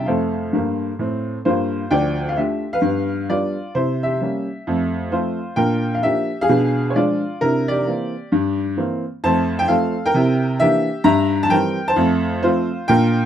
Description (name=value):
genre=jazz, stride piano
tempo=131 BPM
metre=4/4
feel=swing 62% on 8ths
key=F major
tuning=A4 = 440 Hz
part: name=warm upright piano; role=solo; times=0.0-13.3 s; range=D2 to Bb5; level=-17 LUFS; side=equal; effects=none
room=light reverb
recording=rough home demo mix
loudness=-17 LUFS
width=side -10 dB against mid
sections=0.0-1.9 A section; 1.9-13.3 B section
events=none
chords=0.1 F; 1.9 Dm; 2.8 G7; 3.7 C7b9; 4.7 F; 5.6 Bb; 6.5 Bdim7; 7.4 C9; 8.3 C7/G; 9.2 F; 10.2 C9; 11.1 C7/G; 12.0 F